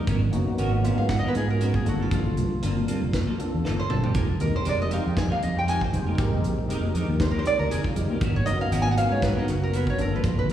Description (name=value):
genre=electric jazz fusion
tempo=118 BPM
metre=4/4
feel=swing 54% on 16ths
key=unclear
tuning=A4 = 440 Hz
part: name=bright tine electric piano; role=accompaniment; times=0.0-10.5 s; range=Ab3 to C5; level=-31 LUFS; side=left 1 dB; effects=medium stereo tremolo, ensemble chorus, slapback echo
part: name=clean electric guitar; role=stabs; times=0.0-10.4 s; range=Ab3 to Bb4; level=-35 LUFS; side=equal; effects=analog chorus, slapback echo
part: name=fingered electric bass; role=bass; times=0.1-10.5 s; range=F1 to Ab2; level=-25 LUFS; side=right 1 dB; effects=none
part: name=crisp fusion drum kit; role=drums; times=0.1-10.5 s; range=hi-hat, kick drum, snare drum, toms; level=-29 LUFS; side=equal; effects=none
part: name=congas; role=percussion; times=0.1-10.5 s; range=none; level=-33 LUFS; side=left 2 dB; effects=slapback echo
part: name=nylon-string guitar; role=melody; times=1.0-10.5 s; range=Eb4 to Ab5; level=-28 LUFS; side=right 1 dB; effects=slapback echo, tape echo
room=light reverb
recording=live gig heard through the venue's PA, recital hall reverb, studio reverb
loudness=-22 LUFS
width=side -11 dB against mid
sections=0.0-10.5 A section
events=nylon-string guitar solo 0.0-10.5; drum fill 3.6-4.2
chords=0.1 Abm11; 1.9 Gm11; 4.2 Fm11; 8.2 Abm11; 10.0 Gm11